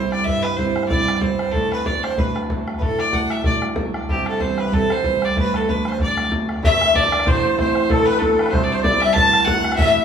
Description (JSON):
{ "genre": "celtic folk, Celtic reel", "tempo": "189 BPM", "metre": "4/4", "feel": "swing 55% on 8ths", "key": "D mixolydian", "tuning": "A4 = 441 Hz", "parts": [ { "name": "bright fiddle", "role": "melody", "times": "0.0-10.0 s", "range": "G4 to A5", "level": "-20 LUFS", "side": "right 1 dB", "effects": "none" }, { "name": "concert harp", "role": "accompaniment", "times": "0.0-10.0 s", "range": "D1 to F#4", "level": "-22 LUFS", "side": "right 2 dB", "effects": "none" }, { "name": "bodhran", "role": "percussion", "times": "0.1-9.9 s", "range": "none", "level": "-24 LUFS", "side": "equal", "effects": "none" }, { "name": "musette accordion", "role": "second line", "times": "6.6-10.0 s", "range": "A4 to A5", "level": "-20 LUFS", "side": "left 3 dB", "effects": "none" } ], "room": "wet studio reverb, RT60 0.9 s", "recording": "band playing live in one room, small room ambience", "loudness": "-16 LUFS", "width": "side -7 dB against mid", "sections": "0.0-6.6 A section; 6.6-10.0 B section", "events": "none", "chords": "0.0 C; 1.5 D; 4.1 C; 5.4 D; 7.3 Am; 7.9 D; 8.5 C; 9.2 D", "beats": "| 0.26 0.58 0.90 1.22 | 1.54 1.86 2.18 2.50 | 2.81 3.13 3.45 3.77 | 4.09 4.41 4.72 5.04 | 5.36 5.68 6.00 6.31 | 6.63 6.95 7.26 7.58 | 7.89 8.21 8.52 8.84 | 9.15 9.47 9.78" }